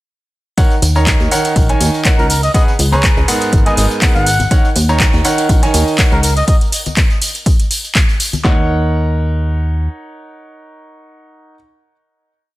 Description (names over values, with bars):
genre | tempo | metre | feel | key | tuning
piano house | 122 BPM | 4/4 | swing 55% on 16ths | Eb minor | A4 = 440 Hz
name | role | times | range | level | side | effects
clear concert grand piano | riff | 0.6-11.5 s | Ab2 to Bb5 | -18 LUFS | right 1 dB | sidechain pumping, tape echo
house drum kit | drums | 0.6-8.4 s | handclaps, hi-hat, tambourine | -18 LUFS | equal | overdrive
punchy analog drum machine | drums | 0.6-8.6 s | handclaps, kick drum, snare drum | -13 LUFS | equal | none
tambourine and congas | percussion | 0.6-8.4 s | none | -24 LUFS | left 2 dB | none
plucky analog bass | bass | 0.8-9.9 s | Ab1 to Eb2 | -15 LUFS | equal | sidechain pumping
breathy trumpet | melody | 2.2-6.6 s | Bb4 to Gb5 | -20 LUFS | equal | vintage 12-bit sampler grit, tape echo
soft-mallet drum kit | drums | 4.5-6.4 s | hi-hat, snare drum | -31 LUFS | right 3 dB | none
room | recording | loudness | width
little or no reverb | none | -11 LUFS | side -18 dB against mid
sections
0.6-8.4 groove; 8.4-12.4 final chord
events
none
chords
0.6 Ebm7; 2.3 Db7sus4; 3.5 Abm9; 4.5 Ebm7; 6.2 N.C.; 8.4 Ebm7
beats
| 0.58 1.07 1.56 2.05 | 2.54 3.04 3.53 4.02 | 4.51 5.00 5.49 5.99 | 6.48 6.97 7.46 7.95 | 8.45 8.94 9.43 9.92 | 10.41 10.90 11.40